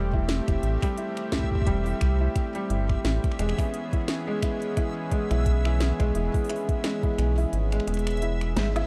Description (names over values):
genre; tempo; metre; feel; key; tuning
IDM; 87 BPM; 4/4; swing 56% on 16ths; unclear; A4 = 440 Hz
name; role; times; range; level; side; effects
warm analog pad; sustained chords; 0.0-8.9 s; E3 to G#4; -36 LUFS; equal; chorus, vintage 12-bit sampler grit
felt-muted upright piano; arpeggios; 0.0-8.9 s; G3 to E4; -33 LUFS; equal; tape echo
rubbery square bass; bass; 0.0-8.8 s; E1 to C2; -27 LUFS; equal; none
backwards swelling texture; texture; 0.3-8.9 s; E5; -44 LUFS; equal; built-in reverb
electronic kick drum; drums; 0.1-7.2 s; none; -28 LUFS; equal; overdrive, studio reverb
organic electronic drum kit; drums; 0.3-8.9 s; finger snaps, hi-hat, snare drum; -35 LUFS; equal; overdrive, studio reverb
room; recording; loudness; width
little or no reverb; dark, warm production; -26 LUFS; mono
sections
0.0-8.9 A section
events
kick drops out 7.5-8.9; drum fill 8.6-8.9; band accent 8.6-8.9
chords
0.0 Am7; 3.4 E6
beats
| 0.63 1.32 2.01 2.70 | 3.39 4.08 4.77 5.46 | 6.15 6.84 7.53 8.22